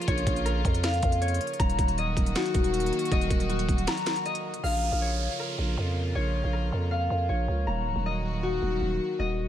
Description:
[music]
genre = hip hop, trap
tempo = 158 BPM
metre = 4/4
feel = half-time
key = Bb minor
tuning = A4 = 439 Hz
[part]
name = warm studio string section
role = sustained chords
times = 0.0-9.5 s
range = Db3 to Gb4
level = -34 LUFS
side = right 4 dB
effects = none
[part]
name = concert harp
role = arpeggios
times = 0.0-9.5 s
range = Gb4 to Bb5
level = -30 LUFS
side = left 4 dB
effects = low-pass filter, ping-pong delay
[part]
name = trap drum kit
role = drums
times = 0.0-4.6 s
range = hi-hat, kick drum, snare drum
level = -28 LUFS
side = equal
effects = vintage 12-bit sampler grit
[part]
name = growling 808-style bass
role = bass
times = 0.1-9.5 s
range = Db1 to F2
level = -28 LUFS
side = equal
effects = none
[part]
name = downlifter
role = sound effects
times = 4.6-7.7 s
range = none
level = -37 LUFS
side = right 7 dB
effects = none
[sound]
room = digital ambience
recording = none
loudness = -25 LUFS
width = side -11 dB against mid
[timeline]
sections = 0.0-4.6 A section; 4.6-9.5 B section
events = break 3.9-4.6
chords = 0.0 Bbm; 1.6 Ebm; 4.6 Bbm; 7.7 Ebm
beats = | 0.08 0.46 0.84 1.22 | 1.60 1.98 2.36 2.74 | 3.12 3.50 3.88 4.26 | 4.63 5.01 5.39 5.78 | 6.15 6.53 6.91 7.29 | 7.67 8.05 8.43 8.81 | 9.19

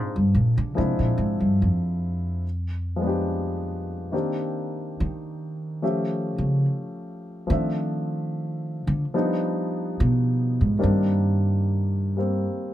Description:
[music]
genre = jazz ballad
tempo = 72 BPM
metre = 4/4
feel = swing 67% on 8ths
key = C minor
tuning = A4 = 440 Hz
[part]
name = warm baby grand piano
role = accompaniment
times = 0.0-12.7 s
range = Eb3 to E5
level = -27 LUFS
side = left 1 dB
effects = none
[part]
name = upright bass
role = bass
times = 0.0-12.4 s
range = F2 to Eb3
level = -23 LUFS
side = equal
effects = none
[sound]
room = little or no reverb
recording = close, detailed microphones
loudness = -22 LUFS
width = side -13 dB against mid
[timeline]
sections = 0.0-12.7 A section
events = upright bass solo 0.0-12.7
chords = 0.0 Fm9; 0.8 Dm7b5; 2.4 G7b9; 4.1 Cm9; 5.8 A7b13; 7.5 Dm9; 9.1 G7b13; 10.8 Cm9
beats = | 0.76 1.60 2.44 3.29 | 4.14 4.99 5.83 6.66 | 7.49 8.32 9.14 9.97 | 10.79 11.62 12.46

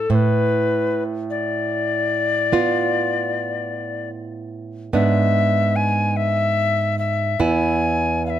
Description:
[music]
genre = romantic duo for recorder and classical guitar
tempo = 49 BPM (dotted quarters)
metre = 12/8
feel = rubato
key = unclear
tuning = A4 = 440 Hz
[part]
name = alto recorder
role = melody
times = 0.0-8.4 s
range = A4 to G#5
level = -21 LUFS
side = left 4 dB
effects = none
[part]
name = nylon-string guitar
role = accompaniment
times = 0.0-8.4 s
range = E2 to F4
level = -21 LUFS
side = right 3 dB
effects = none
[sound]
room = moderate recital hall reverb, RT60 1.4 s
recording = close, detailed microphones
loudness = -18 LUFS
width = side -11 dB against mid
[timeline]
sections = 0.0-8.4 A section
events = none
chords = 0.1 Bm7b5/A; 4.9 E7/G#; 7.4 E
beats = | 0.10 1.30 2.52 3.73 | 4.94 6.16 7.39

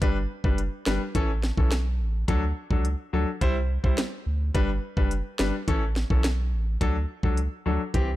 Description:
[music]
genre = dancehall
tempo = 106 BPM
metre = 4/4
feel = straight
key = D major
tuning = A4 = 440 Hz
[part]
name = clear concert grand piano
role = accompaniment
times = 0.0-8.1 s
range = E3 to C5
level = -29 LUFS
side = left 3 dB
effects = none
[part]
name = warm sub bass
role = bass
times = 0.0-8.2 s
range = F#1 to D2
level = -27 LUFS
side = equal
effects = none
[part]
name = island pop drum kit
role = drums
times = 0.0-8.1 s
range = hi-hat, kick drum, snare drum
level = -25 LUFS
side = equal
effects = none
[sound]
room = digital ambience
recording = dark, warm production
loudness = -23 LUFS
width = side -15 dB against mid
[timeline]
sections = 0.0-8.2 A section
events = none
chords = 0.0 G; 1.1 A; 2.3 D; 3.4 C; 4.5 G; 5.7 A; 6.8 D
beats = | 0.02 0.58 1.15 1.72 | 2.28 2.85 3.41 3.98 | 4.55 5.11 5.68 6.24 | 6.81 7.38 7.94

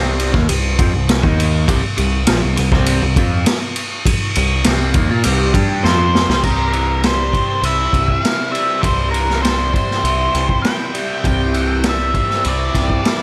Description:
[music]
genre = psychedelic rock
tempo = 100 BPM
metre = 4/4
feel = straight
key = C mixolydian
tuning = A4 = 440 Hz
[part]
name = overdriven electric guitar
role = riff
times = 0.0-13.2 s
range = Bb2 to G4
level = -23 LUFS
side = equal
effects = phaser
[part]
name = growling picked electric bass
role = bass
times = 0.0-13.0 s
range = Bb1 to Bb2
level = -21 LUFS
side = equal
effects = overdrive
[part]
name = raw garage drum kit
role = drums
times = 0.2-13.2 s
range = crash cymbal, kick drum, ride cymbal, snare drum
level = -20 LUFS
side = equal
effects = none
[part]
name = octave-fuzz lead guitar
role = melody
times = 5.8-13.2 s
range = Bb4 to G5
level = -22 LUFS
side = equal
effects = distortion, analog delay
[sound]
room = light reverb, small room ambience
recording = none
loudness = -16 LUFS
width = mono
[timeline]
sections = 0.0-6.4 A section; 6.4-13.2 B section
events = drum fill 5.8-6.4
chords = 0.0 C5; 6.4 C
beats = 0.49 1.08 | 1.68 2.27 2.86 3.46 | 4.05 4.65 5.24 5.84 | 6.44 7.04 7.64 8.24 | 8.84 9.44 10.04 10.64 | 11.24 11.85 12.45 13.05

